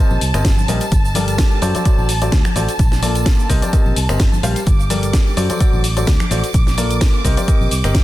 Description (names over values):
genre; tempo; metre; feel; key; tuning
piano house; 128 BPM; 4/4; swing 54% on 16ths; unclear; A4 = 440 Hz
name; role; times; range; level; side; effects
rich symphonic violin section; sustained chords; 0.0-8.0 s; A5 to D6; -26 LUFS; right 1 dB; sidechain pumping
warm baby grand piano; riff; 0.0-8.0 s; F#3 to F5; -22 LUFS; left 2 dB; sidechain pumping, digital delay
fingered electric bass; bass; 0.1-8.0 s; G1 to F#2; -19 LUFS; equal; tube saturation, sidechain pumping
tambourine and congas; percussion; 0.1-8.0 s; none; -28 LUFS; left 4 dB; none
house drum kit; drums; 0.2-8.0 s; cabasa, finger snaps, hi-hat, snare drum; -24 LUFS; equal; none
electronic kick drum; drums; 0.5-8.0 s; none; -15 LUFS; equal; none
room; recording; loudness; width
digital ambience; dense, heavily limited modern master; -13 LUFS; side -15 dB against mid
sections
0.0-8.0 A section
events
none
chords
0.0 Cm7; 0.9 Gmadd9; 1.6 D7; 2.8 Bbmaj7; 3.5 Cm7; 4.7 Gmadd9; 5.4 D7; 6.5 Bbmaj7; 7.2 Cm7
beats
0.45 | 0.92 1.39 1.85 2.32 | 2.79 3.26 3.73 4.20 | 4.67 5.14 5.61 6.07 | 6.54 7.01 7.48 7.95